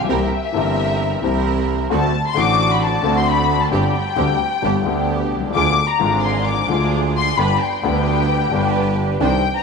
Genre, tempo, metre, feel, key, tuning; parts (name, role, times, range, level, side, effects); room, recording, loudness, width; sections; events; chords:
tango; 132 BPM; 4/4; rubato; A4 = 438 Hz
dark studio violin section; second line; 0.0-9.6 s; E5 to D6; -21 LUFS; left 6 dB; tape echo
warm concert grand piano; accompaniment; 0.0-9.4 s; G1 to G4; -21 LUFS; left 9 dB
rich symphonic string section; stabs; 0.0-9.4 s; B3 to C5; -24 LUFS; right 10 dB; tape echo
warm double bass; bass; 0.0-9.4 s; G1 to D2; -21 LUFS; right 4 dB
moderate echo chamber reverb, RT60 2.6 s; 1960s-style stereo with parts hard left and right; -16 LUFS; side -5 dB against mid
0.0-9.6 A section
violin section solo 0.0-9.6
0.1 C7; 1.9 D7; 3.7 Gsus4; 4.6 G; 5.6 Ddim; 7.4 G